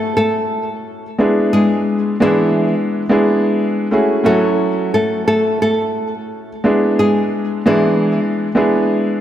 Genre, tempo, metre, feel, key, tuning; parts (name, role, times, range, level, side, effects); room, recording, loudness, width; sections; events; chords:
hip hop; 88 BPM; 4/4; swing 61% on 16ths; A4 = 440 Hz
nylon-string guitar; melody; 0.0-8.2 s; E3 to A4; -18 LUFS; left 1 dB; tape echo
dark grand piano; accompaniment; 0.0-9.2 s; G#3 to A4; -15 LUFS; equal
wet concert hall reverb, RT60 2.4 s; -13 LUFS; side -11 dB against mid
0.0-9.2 A section
0.0 F#m7; 1.2 E7; 3.9 F#m7; 6.6 E7